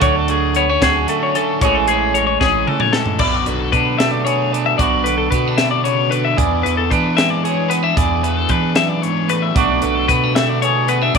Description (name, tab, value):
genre	math rock and midwest emo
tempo	75 BPM (dotted quarters)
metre	6/8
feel	straight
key	unclear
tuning	A4 = 444 Hz
part	clean electric guitar	accompaniment	0.0-11.2 s	E2 to G#4	-19 LUFS	right 16 dB	spring reverb
part	twelve-string electric guitar	arpeggios	0.0-11.2 s	G#4 to E5	-18 LUFS	left 12 dB	none
part	crunchy overdriven guitar	riff	0.0-11.2 s	B2 to B4	-25 LUFS	left 12 dB	none
part	warm sub bass	bass	0.0-11.2 s	A1 to E3	-22 LUFS	right 1 dB	none
part	crisp fusion drum kit	drums	0.0-11.2 s	crash cymbal, hi-hat, kick drum, snare drum, toms	-20 LUFS	equal	none
room	light reverb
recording	1960s-style stereo with parts hard left and right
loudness	-14 LUFS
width	side -5 dB against mid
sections	0.0-3.2 A section; 3.2-11.2 B section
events	drum fill 2.4-3.2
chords	0.0 Dmaj7; 1.6 Amaj7; 3.2 Bm7; 6.4 E7; 9.6 Bm7